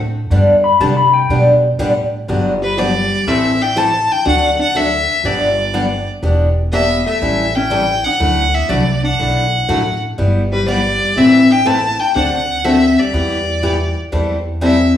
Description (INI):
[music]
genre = country, western swing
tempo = 122 BPM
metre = 4/4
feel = swing 68% on 8ths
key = G major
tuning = A4 = 440 Hz
[part]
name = upright bass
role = bass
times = 0.0-14.9 s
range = E1 to C3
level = -19 LUFS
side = equal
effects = none
[part]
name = picked steel-string acoustic guitar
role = accompaniment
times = 0.3-14.7 s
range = D3 to B4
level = -18 LUFS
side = equal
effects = none
[part]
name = clean lap steel guitar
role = second line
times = 0.6-1.4 s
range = G5 to B5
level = -13 LUFS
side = left 6 dB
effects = none
[part]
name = clear fiddle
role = melody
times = 2.6-14.9 s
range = B4 to A5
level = -16 LUFS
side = left 1 dB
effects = none
[part]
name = archtop guitar, miked and amplified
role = second line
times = 2.6-14.9 s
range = G3 to E4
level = -17 LUFS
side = left 2 dB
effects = none
[sound]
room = wet large studio reverb, RT60 1.2 s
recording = band playing live in one room, small room reverb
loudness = -12 LUFS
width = side -10 dB against mid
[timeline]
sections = 0.0-2.3 A section; 2.3-15.0 B section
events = electric slide guitar solo 0.0-2.3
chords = 0.3 G; 2.3 Gmaj7; 3.3 Am; 4.3 D; 5.2 G; 6.2 Em7; 7.2 A7; 8.2 Dadd9; 10.2 G6; 11.2 Amadd9; 12.2 D7; 13.1 Em; 14.1 Am7/E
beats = | 0.31 0.80 1.29 1.79 | 2.28 2.77 3.27 3.76 | 4.26 4.75 5.25 5.74 | 6.23 6.73 7.22 7.71 | 8.21 8.70 9.20 9.69 | 10.18 10.68 11.17 11.66 | 12.15 12.65 13.14 13.63 | 14.13 14.62